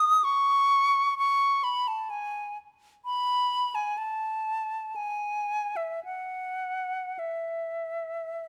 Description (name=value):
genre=classical, free, expressive piece for unaccompanied flute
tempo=50-66 BPM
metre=3/4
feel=rubato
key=C# minor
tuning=A4 = 440 Hz
part: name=silver concert flute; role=solo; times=0.0-8.5 s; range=E5 to D#6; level=-28 LUFS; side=equal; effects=none
room=moderate recital hall reverb, RT60 1.6 s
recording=close, detailed microphones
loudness=-28 LUFS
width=mono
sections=0.0-8.5 A section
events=none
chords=none